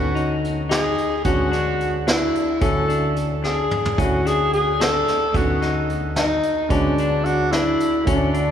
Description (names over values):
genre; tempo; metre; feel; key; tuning
progressive instrumental, band music in an uneven meter; 220 BPM (eighths); 5/8; straight; unclear; A4 = 439 Hz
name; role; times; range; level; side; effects
breathy tenor saxophone; melody; 0.0-8.5 s; D4 to A4; -21 LUFS; equal; none
warm grand piano; accompaniment; 0.0-8.5 s; G#3 to C#5; -29 LUFS; right 1 dB; none
clean electric guitar; arpeggios; 0.0-8.5 s; B3 to D#4; -26 LUFS; left 3 dB; none
woody fretless electric bass; bass; 0.0-8.5 s; D2; -25 LUFS; left 1 dB; none
vintage brush drum kit; drums; 0.2-8.5 s; hi-hat, kick drum, snare drum, toms; -26 LUFS; right 1 dB; none
room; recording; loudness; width
wet church reverb, RT60 4.0 s; recorded in a church or concert hall; -18 LUFS; side -9 dB against mid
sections
0.0-8.5 A section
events
drum fill 3.4-4.0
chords
0.0 B7/D (rootless); 1.2 E9/D; 2.6 Dmaj7; 5.3 B7/D; 6.7 E9/D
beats
0.15 0.43 0.70 0.97 | 1.25 1.52 1.79 2.07 2.34 | 2.61 2.89 3.16 3.43 3.71 | 3.98 4.25 4.52 4.80 5.07 | 5.34 5.61 5.89 6.16 6.43 | 6.70 6.97 7.25 7.52 7.79 | 8.06 8.33